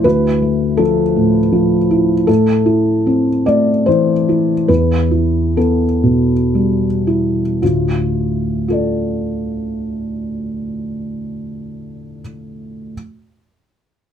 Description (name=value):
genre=neoclassical minimalist piano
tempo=54-82 BPM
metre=3/4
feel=rubato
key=D dorian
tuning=A4 = 440 Hz
part: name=felt-muted upright piano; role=solo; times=0.0-12.9 s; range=D2 to D5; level=-14 LUFS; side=equal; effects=none
room=little or no reverb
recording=close, detailed microphones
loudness=-13 LUFS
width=side -8 dB against mid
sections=0.0-7.6 A section; 7.6-10.7 B section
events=slowing down 1.2-7.6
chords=0.0 Dmadd9; 2.3 Am; 4.7 Em; 7.6 Dm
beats=| 0.04 0.79 1.53 | 2.28 3.06 3.86 | 4.68 5.56 6.53 | 7.61 8.66 9.70